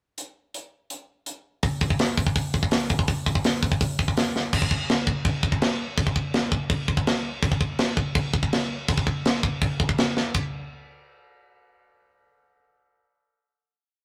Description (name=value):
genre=metal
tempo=165 BPM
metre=4/4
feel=straight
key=none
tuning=none
part: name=tight metal drum kit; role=drums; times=0.2-10.4 s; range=crash cymbal, hi-hat, kick drum, ride cymbal, snare drum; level=-25 LUFS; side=equal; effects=none
room=light reverb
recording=rough rehearsal-room recording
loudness=-24 LUFS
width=mono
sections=0.2-1.6 pickup bar; 1.6-4.5 intro; 4.5-10.3 riff; 10.3-11.8 final hit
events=drum fill 4.4, 10.2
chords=none